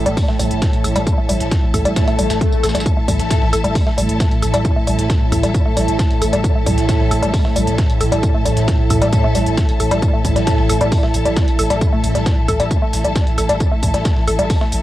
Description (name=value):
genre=driving peak-time techno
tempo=134 BPM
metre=4/4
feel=straight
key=unclear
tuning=A4 = 440 Hz
part: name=growling 808-style bass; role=bass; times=0.0-14.8 s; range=A1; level=-22 LUFS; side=equal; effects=overdrive, sidechain pumping, low-pass filter
part: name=deep dark ambient pad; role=drone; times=0.0-14.8 s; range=A2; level=-21 LUFS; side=right 1 dB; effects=chorus, built-in reverb, sidechain pumping, cassette tape
part: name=warm symphonic string section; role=texture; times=0.0-14.8 s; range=E4 to A5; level=-24 LUFS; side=left 2 dB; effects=sidechain pumping, cassette tape
part: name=woody wave-folded pluck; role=riff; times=0.1-14.7 s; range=G3 to A4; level=-21 LUFS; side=left 1 dB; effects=chorus, cassette tape, sidechain pumping, tape echo
part: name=electronic hi-hat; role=drums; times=0.1-14.8 s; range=none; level=-28 LUFS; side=right 1 dB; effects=sidechain pumping on hats
part: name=breakbeat sampler-style drum kit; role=drums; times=0.2-14.8 s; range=hi-hat, snare drum, tambourine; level=-30 LUFS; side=equal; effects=high-pass filter on snare, high-pass filter on perc, high-pass filter on hats
part: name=electronic kick drum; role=drums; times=0.2-14.6 s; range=none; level=-16 LUFS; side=equal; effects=none
part: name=swell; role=sound effects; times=2.1-2.9 s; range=none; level=-24 LUFS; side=left 8 dB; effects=none
room=light reverb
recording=home recording on cassette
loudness=-14 LUFS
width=side -14 dB against mid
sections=0.0-14.8 A section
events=swell 2.1-2.9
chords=0.0 A5